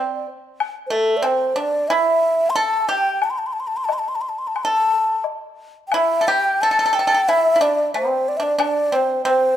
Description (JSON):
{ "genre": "chinese traditional, Chinese chamber ensemble", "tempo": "91 BPM", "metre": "4/4", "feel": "rubato", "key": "A yu mode", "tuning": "A4 = 440 Hz", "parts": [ { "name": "breathy low xiao", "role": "melody", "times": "0.0-9.6 s", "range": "A4 to C6", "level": "-18 LUFS", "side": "left 1 dB", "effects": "none" }, { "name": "pipa", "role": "second line", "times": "0.0-9.6 s", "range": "A3 to A4", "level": "-21 LUFS", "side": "right 3 dB", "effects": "none" }, { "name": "woodblock", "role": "percussion", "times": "0.6-8.7 s", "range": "none", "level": "-26 LUFS", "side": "left 6 dB", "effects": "none" } ], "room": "light reverb", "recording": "close, detailed microphones", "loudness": "-17 LUFS", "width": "side -11 dB against mid", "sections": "0.0-5.9 A section; 5.9-9.6 B section", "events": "none", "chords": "none", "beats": "| 0.60 1.24 1.90 2.56 | 3.22 3.88 4.55 5.24 | 5.93 6.61 7.28 7.95 | 8.60 9.25" }